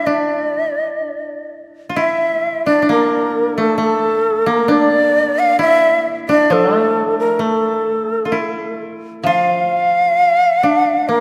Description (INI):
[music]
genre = japanese traditional, Japanese chamber music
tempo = 66 BPM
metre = 2/4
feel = rubato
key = D hirajoshi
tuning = A4 = 444 Hz
[part]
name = breathy bright shakuhachi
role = melody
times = 0.0-11.2 s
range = A4 to F5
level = -17 LUFS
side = equal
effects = none
[part]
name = koto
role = second line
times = 0.0-11.2 s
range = A3 to F4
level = -21 LUFS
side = equal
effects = none
[part]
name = koto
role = accompaniment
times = 9.2-11.2 s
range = F3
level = -25 LUFS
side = equal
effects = none
[sound]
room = wet concert hall reverb, RT60 2.6 s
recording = none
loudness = -16 LUFS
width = mono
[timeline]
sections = 0.0-2.0 A section; 2.0-11.2 B section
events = none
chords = none